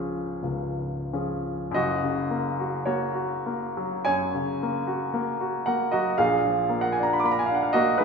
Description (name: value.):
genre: classical, romantic nocturne for solo piano.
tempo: 43-58 BPM.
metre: 4/4.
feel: rubato.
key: F# major.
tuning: A4 = 440 Hz.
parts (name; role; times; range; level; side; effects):
clear baby grand piano; solo; 0.0-8.0 s; C#1 to D6; -23 LUFS; equal; none.
room: wet recital hall reverb, RT60 1.7 s.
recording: minimal, uncompressed stereo recording.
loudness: -24 LUFS.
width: side -5 dB against mid.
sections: 0.0-1.7 A section; 1.7-8.0 B section.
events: none.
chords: 0.0 C#; 1.7 F#; 6.2 A#7.